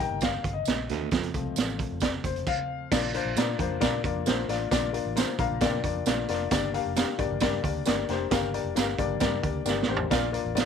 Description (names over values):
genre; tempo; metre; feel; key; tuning
uptempo 1960s-style soul; 134 BPM; 4/4; straight; Bb major; A4 = 442 Hz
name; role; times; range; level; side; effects
dark upright piano; accompaniment; 0.0-10.7 s; F3 to Bb5; -29 LUFS; left 11 dB; none
vintage muted fingered electric bass; bass; 0.0-10.6 s; F1 to Bb2; -34 LUFS; equal; none
raw garage drum kit; drums; 0.0-10.7 s; crash cymbal, hi-hat, kick drum, snare drum, toms; -28 LUFS; right 5 dB; none
congas; percussion; 0.2-10.7 s; none; -43 LUFS; right 11 dB; none
tambourine; percussion; 0.2-10.7 s; none; -39 LUFS; right 13 dB; none
warm baritone saxophone; riff; 0.9-1.3, 10.1-10.3 s; D2 to Bb2; -33 LUFS; right 11 dB; none
room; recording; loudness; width
light reverb, studio ambience; 1960s-style stereo with parts hard left and right; -25 LUFS; side -7 dB against mid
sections
0.0-2.9 A section; 2.9-10.7 B section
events
upright piano solo 0.0-2.9; upright piano fill 5.2-6.5; drum fill 9.7-10.1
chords
0.0 Eb; 1.1 F; 2.9 Bb